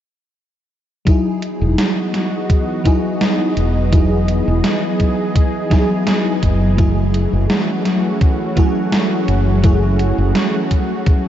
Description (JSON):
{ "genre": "vaporwave", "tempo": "84 BPM", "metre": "4/4", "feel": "straight", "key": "unclear", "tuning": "A4 = 441 Hz", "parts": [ { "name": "FM electric piano with soft pad layer", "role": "accompaniment", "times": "1.1-11.3 s", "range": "F#3 to G#4", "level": "-19 LUFS", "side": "equal", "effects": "tremolo, ensemble chorus, tape echo" }, { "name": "lush unison pad", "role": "sustained chords", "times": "1.6-11.3 s", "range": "E3 to D#5", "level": "-23 LUFS", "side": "right 1 dB", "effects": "chorus" }, { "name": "electronic kick drum", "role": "drums", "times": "1.1-11.2 s", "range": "none", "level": "-14 LUFS", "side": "equal", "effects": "vintage 12-bit sampler grit" }, { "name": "gated 80s digital drum machine", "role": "drums", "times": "1.1-11.2 s", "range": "hi-hat, snare drum", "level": "-22 LUFS", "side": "right 2 dB", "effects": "gated reverb, gated reverb snare, vintage 12-bit sampler grit" }, { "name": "mellow fretless electric bass", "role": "bass", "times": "1.6-10.3 s", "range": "E1 to F#1", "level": "-16 LUFS", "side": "equal", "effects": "tube saturation" } ], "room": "moderate huge ambient reverb, RT60 7.5 s", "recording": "dreamy mix soaked in reverb, cassette tape, nothing above 7.9 kHz", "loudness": "-14 LUFS", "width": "side -11 dB against mid", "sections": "1.1-11.3 A section", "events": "none", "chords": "1.1 Emaj9; 6.8 F#m9" }